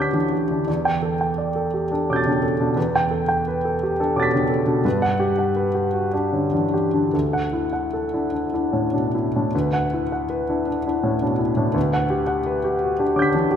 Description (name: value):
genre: classical, impressionist solo piano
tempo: 48-59 BPM (dotted quarters)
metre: 6/8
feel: rubato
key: unclear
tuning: A4 = 440 Hz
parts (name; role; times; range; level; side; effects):
- clear grand piano; solo; 0.0-13.6 s; D2 to B6; -19 LUFS; equal; none
room: wet recital hall reverb, RT60 1.7 s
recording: none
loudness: -19 LUFS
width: side -8 dB against mid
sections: 0.0-9.5 A section; 9.5-13.6 A section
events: none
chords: 0.0 Gmaj7/D; 0.7 G69/E; 4.8 Gmaj7; 7.1 D69; 11.8 Gmaj7/D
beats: | 0.68 1.73 | 2.76 3.81 | 4.85 5.95 | 7.13 8.32 | 9.53 10.66 | 11.75 12.82